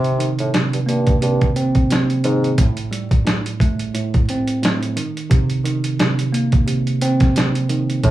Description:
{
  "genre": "hip hop, boom-bap hip-hop",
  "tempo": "88 BPM",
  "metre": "4/4",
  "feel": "swing 57% on 16ths",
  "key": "unclear",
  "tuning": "A4 = 438 Hz",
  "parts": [
    { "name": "mellow tine electric piano", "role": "accompaniment", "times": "0.0-8.1 s", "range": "A2 to C4", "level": "-18 LUFS", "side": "right 2 dB", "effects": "high-pass filter, low-pass filter" },
    { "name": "dark bassoon", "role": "bass", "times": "0.0-2.5, 8.0-8.1 s", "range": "G2 to C3", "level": "-21 LUFS", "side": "equal", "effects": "none" },
    { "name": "boom bap sampler-style drum kit", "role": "drums", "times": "0.0-8.1 s", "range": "hi-hat, kick drum, snare drum", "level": "-19 LUFS", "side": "equal", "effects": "none" }
  ],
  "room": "moderate small room reverb, RT60 0.5 s",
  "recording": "vinyl crackle, small room ambience",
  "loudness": "-16 LUFS",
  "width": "side -14 dB against mid",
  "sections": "0.0-2.6 A section; 2.6-8.1 B section",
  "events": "none",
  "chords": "0.0 Cm7; 2.6 Am7; 5.0 Cm7"
}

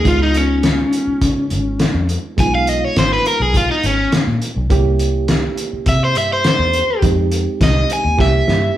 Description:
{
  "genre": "straight-eighth soul blues",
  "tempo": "103 BPM",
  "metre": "4/4",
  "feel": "straight",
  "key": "unclear",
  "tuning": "A4 = 440 Hz",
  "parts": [
    { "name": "crunchy overdriven guitar", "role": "melody", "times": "0.0-8.8 s", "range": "Db4 to Ab5", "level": "-17 LUFS", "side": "left 1 dB", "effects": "slapback echo" },
    { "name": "barky reed electric piano", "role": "accompaniment", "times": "0.0-8.8 s", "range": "Ab3 to G4", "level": "-23 LUFS", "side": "right 5 dB", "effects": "fast tremolo" },
    { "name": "vintage muted fingered electric bass", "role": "bass", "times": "0.1-8.7 s", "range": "Ab1 to Db3", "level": "-19 LUFS", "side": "equal", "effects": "none" },
    { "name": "cloth-damped thuddy drum kit", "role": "drums", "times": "0.1-8.6 s", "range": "hi-hat, kick drum, snare drum", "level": "-18 LUFS", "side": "left 1 dB", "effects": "none" }
  ],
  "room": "moderate large studio reverb, RT60 0.8 s",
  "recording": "band playing live in one room",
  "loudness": "-13 LUFS",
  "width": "side -12 dB against mid",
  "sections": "0.0-8.8 A section",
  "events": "overdriven electric guitar solo 0.0-8.8; drum fill 8.2-8.8",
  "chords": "0.1 Db7; 4.7 C7b9; 7.0 Fm7; 8.2 C7b9"
}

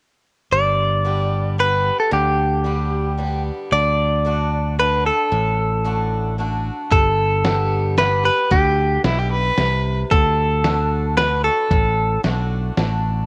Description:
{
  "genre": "honky-tonk and classic country",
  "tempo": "113 BPM",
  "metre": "3/4",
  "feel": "straight",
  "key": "G major",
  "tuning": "A4 = 440 Hz",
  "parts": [
    { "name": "direct-recorded clean electric guitar", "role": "melody", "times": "0.5-12.2 s", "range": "G4 to D5", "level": "-21 LUFS", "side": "equal", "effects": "cassette tape" },
    { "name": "picked swing-style acoustic guitar", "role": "accompaniment", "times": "0.5-13.3 s", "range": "G2 to G4", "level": "-31 LUFS", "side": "equal", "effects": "cassette tape" },
    { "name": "fingered electric bass", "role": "bass", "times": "0.5-13.2 s", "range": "G1 to D2", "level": "-24 LUFS", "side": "equal", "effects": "none" },
    { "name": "lo-fi sampler-style drum kit", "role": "drums", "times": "6.9-12.9 s", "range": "hi-hat, kick drum, snare drum", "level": "-23 LUFS", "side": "equal", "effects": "none" },
    { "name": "clear fiddle", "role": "second line", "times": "9.0-10.0 s", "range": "E4 to B4", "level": "-25 LUFS", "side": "equal", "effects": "cassette tape" }
  ],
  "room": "light reverb",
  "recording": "home recording on cassette",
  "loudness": "-19 LUFS",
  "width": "mono",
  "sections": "0.5-6.9 A section; 6.9-13.3 B section",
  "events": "none",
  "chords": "0.5 G; 3.7 D; 6.9 Gadd9; 10.1 D"
}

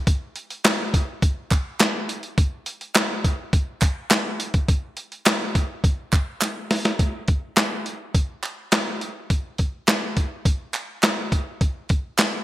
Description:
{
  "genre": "funk",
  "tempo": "104 BPM",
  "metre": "4/4",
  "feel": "straight",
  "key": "none",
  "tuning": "none",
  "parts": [
    { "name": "boom bap sampler-style drum kit", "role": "drums", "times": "0.1-12.3 s", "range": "handclaps, hi-hat, kick drum, snare drum", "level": "-20 LUFS", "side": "equal", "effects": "gated reverb" },
    { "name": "group handclap", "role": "percussion", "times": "0.7-12.3 s", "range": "none", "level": "-28 LUFS", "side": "right 4 dB", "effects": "none" }
  ],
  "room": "light reverb",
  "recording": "bright 1980s-style digital production",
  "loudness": "-21 LUFS",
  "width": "side -15 dB against mid",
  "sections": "0.0-7.0 A section; 7.0-12.4 B section",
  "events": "drum fill 6.4-7.0",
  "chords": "none"
}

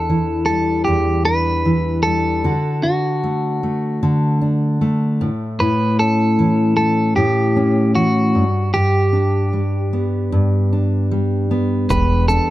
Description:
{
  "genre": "acoustic pop",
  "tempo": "76 BPM",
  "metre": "4/4",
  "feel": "straight",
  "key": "D major",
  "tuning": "A4 = 440 Hz",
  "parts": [
    { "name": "clean electric guitar", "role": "melody", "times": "0.0-12.5 s", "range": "F#4 to B4", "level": "-20 LUFS", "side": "right 1 dB", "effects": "none" },
    { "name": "fingerpicked steel-string acoustic guitar", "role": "accompaniment", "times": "0.0-12.5 s", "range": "E2 to G4", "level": "-16 LUFS", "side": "equal", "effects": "none" },
    { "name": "woody fretless electric bass", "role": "bass", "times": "11.9-12.4 s", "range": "E1", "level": "-17 LUFS", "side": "equal", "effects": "none" },
    { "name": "electronic shaker and kick drum", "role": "drums", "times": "11.9-12.5 s", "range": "none", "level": "-23 LUFS", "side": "right 1 dB", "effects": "none" }
  ],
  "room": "little or no reverb",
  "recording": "dark, warm production",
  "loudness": "-15 LUFS",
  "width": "side -15 dB against mid",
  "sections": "0.0-12.5 A section",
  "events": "none",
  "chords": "0.0 Em7; 2.4 D; 5.2 A; 8.4 G; 11.9 Em7"
}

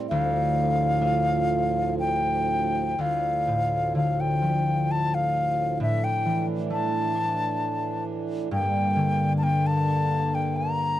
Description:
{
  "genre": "celtic folk, Celtic slow air",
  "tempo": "60-68 BPM",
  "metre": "3/4",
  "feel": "rubato",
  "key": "D minor",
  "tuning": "A4 = 443 Hz",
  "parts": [
    { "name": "concert harp", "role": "accompaniment", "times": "0.0-11.0 s", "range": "D2 to G4", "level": "-26 LUFS", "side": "left 1 dB", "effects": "none" },
    { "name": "hand-pumped harmonium", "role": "sustained chords", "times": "0.0-11.0 s", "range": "D2 to D4", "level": "-30 LUFS", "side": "right 4 dB", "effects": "stereo widening" },
    { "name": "wooden flute", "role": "melody", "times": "0.1-11.0 s", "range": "E5 to Bb5", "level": "-25 LUFS", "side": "left 2 dB", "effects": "none" }
  ],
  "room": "small room ambience",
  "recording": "dry, close 1970s-style studio recording",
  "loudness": "-22 LUFS",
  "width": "side -13 dB against mid",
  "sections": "0.0-3.0 A section; 3.0-11.0 B section",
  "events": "none",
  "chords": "0.1 Dm; 5.8 Asus4; 8.5 Gm"
}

